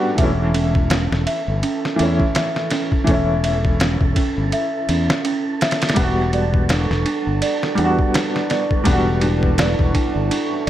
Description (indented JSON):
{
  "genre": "trip hop",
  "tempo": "83 BPM",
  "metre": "4/4",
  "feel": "swing 57% on 16ths",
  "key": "unclear",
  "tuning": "A4 = 443 Hz",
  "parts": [
    { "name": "felt-muted upright piano", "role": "accompaniment", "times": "0.0-10.7 s", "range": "E3 to F#4", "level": "-22 LUFS", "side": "equal", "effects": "tremolo, low-pass filter, tape echo" },
    { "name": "small celesta", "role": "arpeggios", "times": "0.0-10.7 s", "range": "C#4 to E5", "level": "-24 LUFS", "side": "right 3 dB", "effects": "tape echo" },
    { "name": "wind-like tuned noise texture", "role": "texture", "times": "0.1-10.7 s", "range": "A4", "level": "-31 LUFS", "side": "right 3 dB", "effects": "built-in reverb" },
    { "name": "overdriven fingered electric bass", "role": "bass", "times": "0.2-10.7 s", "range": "E1 to E2", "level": "-20 LUFS", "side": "left 1 dB", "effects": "tube saturation" },
    { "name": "trip hop sampler-style drum kit", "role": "drums", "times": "0.2-10.7 s", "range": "kick drum, ride cymbal, snare drum", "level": "-21 LUFS", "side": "equal", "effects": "studio reverb" },
    { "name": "deep dark ambient pad", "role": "sustained chords", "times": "7.1-10.7 s", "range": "E4 to C#6", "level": "-29 LUFS", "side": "right 1 dB", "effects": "chorus, built-in reverb, vintage 12-bit sampler grit" }
  ],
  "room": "light reverb, digital ambience",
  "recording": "none",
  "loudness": "-16 LUFS",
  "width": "side -12 dB against mid",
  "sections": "0.0-10.7 A section",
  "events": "none",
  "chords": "0.2 A/E; 6.0 Em7",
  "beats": "| 0.19 0.91 1.63 2.36 | 3.08 3.80 4.53 5.25 | 5.97 6.69 7.42 8.14 | 8.86 9.59 10.31"
}